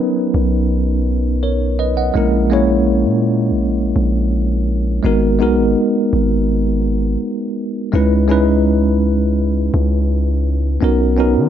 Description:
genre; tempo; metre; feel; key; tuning
contemporary R&B; 83 BPM; 4/4; straight; G# minor; A4 = 440 Hz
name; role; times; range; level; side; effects
bell-like tine electric piano; accompaniment; 0.0-11.5 s; F#3 to F#5; -16 LUFS; equal; fast stereo tremolo
long sustained 808-style bass; bass; 0.3-11.5 s; G#1 to D#3; -17 LUFS; equal; none
room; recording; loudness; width
light reverb; none; -14 LUFS; side -10 dB against mid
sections
0.0-11.5 A section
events
none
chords
0.0 Bmaj7; 2.1 A#m7b5; 5.0 G#m7; 7.9 C#m7; 10.8 Bmaj7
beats
0.70 1.43 | 2.15 2.87 3.60 4.32 | 5.04 5.76 6.49 7.21 | 7.93 8.65 9.38 10.10 | 10.82

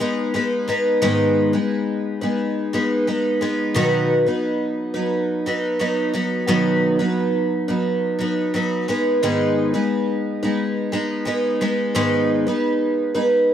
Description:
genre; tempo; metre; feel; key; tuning
pop; 88 BPM; 4/4; straight; unclear; A4 = 435 Hz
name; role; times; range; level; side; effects
picked twelve-string acoustic guitar; solo; 0.0-13.5 s; G#2 to B4; -18 LUFS; equal; lush chorus
room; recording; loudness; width
moderate booth ambience, RT60 0.2 s; dry, close 1970s-style studio recording; -18 LUFS; side -9 dB against mid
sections
0.0-13.5 A section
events
none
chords
0.0 G#m; 3.8 B; 8.9 G#m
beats
0.35 | 1.03 1.71 2.39 3.08 | 3.76 4.44 5.12 5.81 | 6.49 7.17 7.86 8.54 | 9.22 9.91 10.59 11.27 | 11.95 12.64 13.32

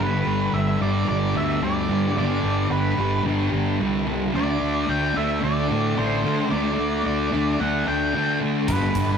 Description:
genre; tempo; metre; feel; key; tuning
rock, shoegaze and dream pop; 110 BPM; 4/4; straight; G major; A4 = 440 Hz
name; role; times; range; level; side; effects
octave-fuzz lead guitar; melody; 0.0-9.2 s; B4 to G5; -27 LUFS; equal; distortion, analog delay
thick fuzz guitar; riff; 0.0-9.2 s; G2 to D4; -23 LUFS; equal; distortion
fuzz fingered electric bass; bass; 0.0-9.2 s; G1 to D3; -26 LUFS; right 1 dB; overdrive
gated 80s drum kit; drums; 8.7-9.1 s; hi-hat, kick drum; -28 LUFS; right 1 dB; none
room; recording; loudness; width
wet small room ambience, RT60 0.5 s; rough rehearsal-room recording, tube saturation; -20 LUFS; side -7 dB against mid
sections
0.0-9.2 A section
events
none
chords
0.0 G; 4.3 D5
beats
0.54 1.08 1.62 | 2.17 2.71 3.25 3.80 | 4.34 4.88 5.43 5.97 | 6.51 7.05 7.60 8.14 | 8.68

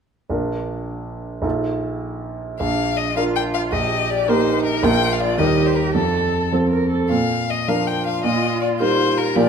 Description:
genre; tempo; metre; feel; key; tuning
quick classical-period movement for piano trio; 106 BPM (dotted quarters); 6/8; rubato; Bb major; A4 = 441 Hz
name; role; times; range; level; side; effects
clear concert grand piano; accompaniment; 0.3-9.5 s; Bb1 to Bb4; -20 LUFS; right 2 dB; none
rich violin; melody; 2.6-9.5 s; A4 to G5; -22 LUFS; left 8 dB; none
warm cello; second line; 2.6-9.5 s; D4 to Bb4; -25 LUFS; right 4 dB; none
room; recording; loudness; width
wet recital hall reverb, RT60 1.5 s; minimal, uncompressed stereo recording; -18 LUFS; side -7 dB against mid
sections
0.3-2.6 A section; 2.6-9.5 B section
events
none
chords
0.3 Bb; 1.4 F7/Bb; 2.6 Bb; 3.7 Eb/Bb; 4.8 Bb5; 5.4 Eb; 5.9 F; 7.1 Bb; 8.2 Eb/Bb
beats
| 0.32 0.89 | 1.44 2.01 | 2.60 3.16 | 3.72 4.28 | 4.83 5.38 | 5.94 6.52 | 7.10 7.68 | 8.24 8.80 | 9.36

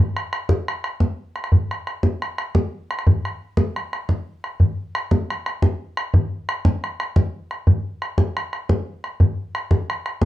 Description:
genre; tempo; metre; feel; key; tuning
celtic folk; 117 BPM (dotted quarters); 9/8; straight; none; none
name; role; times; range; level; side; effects
bodhran; percussion; 0.1-10.2 s; none; -18 LUFS; equal; none
room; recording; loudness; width
light reverb; dark, warm production; -20 LUFS; side -14 dB against mid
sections
0.0-4.6 A section; 4.6-10.2 B section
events
none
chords
none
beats
0.49 1.00 | 1.52 2.04 2.55 | 3.06 3.58 4.09 | 4.60 5.11 5.62 | 6.14 6.65 7.16 | 7.67 8.18 8.69 | 9.20 9.71 10.22

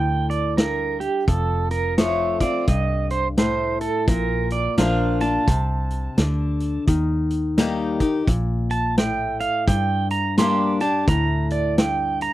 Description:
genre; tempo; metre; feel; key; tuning
honky-tonk and classic country; 86 BPM; 4/4; swing 61% on 8ths; G minor; A4 = 439 Hz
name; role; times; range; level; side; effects
pedal steel guitar; second line; 0.0-12.3 s; G4 to C6; -24 LUFS; right 5 dB; none
picked old ladder-braced acoustic guitar; accompaniment; 0.0-12.3 s; F2 to G4; -24 LUFS; left 4 dB; none
vintage muted fingered electric bass; bass; 0.0-12.3 s; F1 to G2; -24 LUFS; equal; none
vintage drum kit; drums; 0.3-12.3 s; hi-hat, kick drum, snare drum; -21 LUFS; equal; none
room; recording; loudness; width
light reverb; dry, close 1970s-style studio recording; -19 LUFS; side -15 dB against mid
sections
0.0-12.3 A section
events
pedal steel guitar solo 0.0-12.3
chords
0.0 Gm; 1.3 F; 4.1 Bb; 6.9 Eb; 9.7 Gm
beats
0.58 | 1.28 1.98 2.68 3.38 | 4.08 4.78 5.48 6.18 | 6.88 7.58 8.28 8.98 | 9.68 10.38 11.08 11.78

